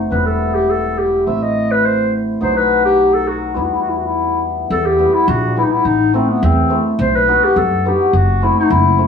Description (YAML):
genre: klezmer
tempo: 105 BPM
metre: 2/4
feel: straight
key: E harmonic minor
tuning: A4 = 440 Hz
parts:
  - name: cimbalom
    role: accompaniment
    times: 0.0-9.1 s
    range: F#3 to F#4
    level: -19 LUFS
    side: left 2 dB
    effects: none
  - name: upright bass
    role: bass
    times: 0.0-9.0 s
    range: E1 to F#2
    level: -20 LUFS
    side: right 1 dB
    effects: none
  - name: warm clarinet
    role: melody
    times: 0.1-9.1 s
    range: B3 to E5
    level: -15 LUFS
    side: left 1 dB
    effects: none
room: wet studio reverb, RT60 0.9 s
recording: band playing live in one room, small room ambience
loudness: -13 LUFS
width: side -7 dB against mid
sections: 0.0-4.7 A section; 4.7-9.1 A section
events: none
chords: 0.1 Em; 1.3 Am; 2.4 B; 3.6 Em; 5.9 Am; 7.0 B; 8.1 F#dim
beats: | 0.12 0.69 | 1.27 1.84 | 2.42 2.99 | 3.56 4.14 | 4.71 5.28 | 5.85 6.42 | 6.99 7.56 | 8.13 8.70